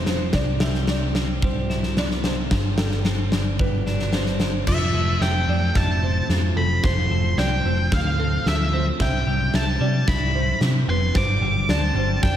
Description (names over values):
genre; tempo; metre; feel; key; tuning
post-rock; 111 BPM; 4/4; straight; unclear; A4 = 439 Hz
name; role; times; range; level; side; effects
felt-muted upright piano; arpeggios; 0.0-12.4 s; F4 to E5; -32 LUFS; right 3 dB; slapback echo
twelve-string electric guitar; arpeggios; 0.0-12.4 s; G2 to E4; -31 LUFS; left 2 dB; spring reverb, slapback echo
picked electric bass; bass; 0.0-12.4 s; F1 to C3; -23 LUFS; equal; none
huge arena drum kit; drums; 0.1-12.4 s; crash cymbal, kick drum, snare drum; -23 LUFS; equal; none
octave-fuzz lead guitar; melody; 4.7-12.4 s; E5 to D6; -25 LUFS; equal; distortion, slapback echo
room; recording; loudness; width
light reverb, small room ambience; none; -19 LUFS; side -10 dB against mid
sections
0.0-4.7 A section; 4.7-12.4 B section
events
build-up 4.7-12.4; drum fill 4.7-12.4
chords
0.3 Cmaj7; 2.5 Gsus4; 4.7 Fmaj7; 9.0 Cmaj7; 11.2 Gsus4